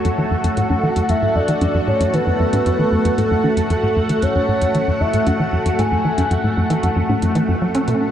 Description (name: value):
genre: ambient, sequencer-driven space music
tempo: 115 BPM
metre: 4/4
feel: straight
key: F# minor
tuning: A4 = 440 Hz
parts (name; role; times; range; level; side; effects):
- lush unison pad; sustained chords; 0.0-8.1 s; A3 to F#5; -20 LUFS; equal; chorus, phaser
- electronic hi-hat and congas; percussion; 0.0-8.1 s; none; -28 LUFS; right 1 dB; analog delay
- soft octave-layered synth lead; melody; 0.1-7.9 s; A4 to G#5; -22 LUFS; equal; chorus, tremolo, analog delay
- tight sequencer bass; riff; 0.1-7.9 s; F#2 to C#4; -19 LUFS; equal; lush chorus, analog delay
room: wet scoring stage reverb, RT60 2.1 s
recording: dark, warm production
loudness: -15 LUFS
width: side -10 dB against mid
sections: 0.0-8.1 A section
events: filter sweep on analog synth bass 0.0-8.1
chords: 0.0 F#m